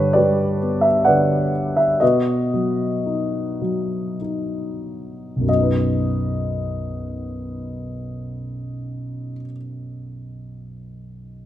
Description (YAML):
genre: classical, lyrical solo piano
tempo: 45-67 BPM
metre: 3/4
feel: rubato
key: B major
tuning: A4 = 440 Hz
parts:
  - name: dark concert grand piano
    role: solo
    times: 0.0-11.5 s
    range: B1 to F#5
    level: -20 LUFS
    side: equal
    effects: none
room: moderate recital hall reverb, RT60 1.5 s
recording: minimal, uncompressed stereo recording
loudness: -19 LUFS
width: side -12 dB against mid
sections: 0.0-5.5 A section; 5.5-9.3 B section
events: slowing down 0.0-5.5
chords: 0.0 G; 2.0 B